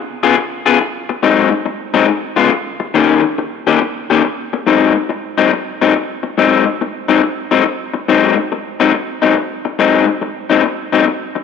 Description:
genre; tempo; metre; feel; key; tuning
blues; 140 BPM; 4/4; swing 66% on 8ths; Ab mixolydian; A4 = 440 Hz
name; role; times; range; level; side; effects
electric guitar through a small old amp; solo; 0.2-11.4 s; Ab2 to Ab4; -12 LUFS; left 6 dB; none
room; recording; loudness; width
moderate echo chamber reverb, RT60 2.0 s; none; -12 LUFS; side -6 dB against mid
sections
0.0-4.7 A section; 4.7-11.4 A section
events
none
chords
0.0 Db7; 1.2 Ab7; 2.1 Db7; 3.0 Eb7; 4.7 Ab7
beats
0.39 0.81 | 1.24 1.67 2.10 2.53 | 2.96 3.39 3.82 4.24 | 4.67 5.10 5.53 5.96 | 6.38 6.81 7.24 7.67 | 8.09 8.52 8.95 9.37 | 9.80 10.23 10.65 11.08

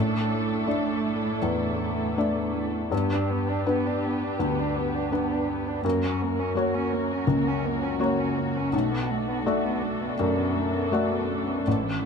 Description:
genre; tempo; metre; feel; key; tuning
neoclassical piano and strings; 82 BPM; 4/4; rubato; B minor; A4 = 440 Hz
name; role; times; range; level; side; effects
muted cello; second line; 0.0-12.1 s; E3 to D4; -30 LUFS; right 11 dB; none
felt-muted upright piano; accompaniment; 0.0-12.1 s; A1 to D5; -25 LUFS; left 3 dB; none
muted studio string section; sustained chords; 0.0-12.1 s; C#4 to B4; -33 LUFS; equal; none
room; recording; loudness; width
light reverb; close, detailed microphones; -24 LUFS; side -6 dB against mid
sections
0.0-12.1 A section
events
none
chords
0.0 Asus4; 2.9 G; 5.8 F#; 8.7 Bm7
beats
0.68 1.43 2.17 | 2.92 3.66 4.39 5.12 | 5.84 6.57 7.28 8.01 | 8.73 9.45 10.18 10.91 | 11.66

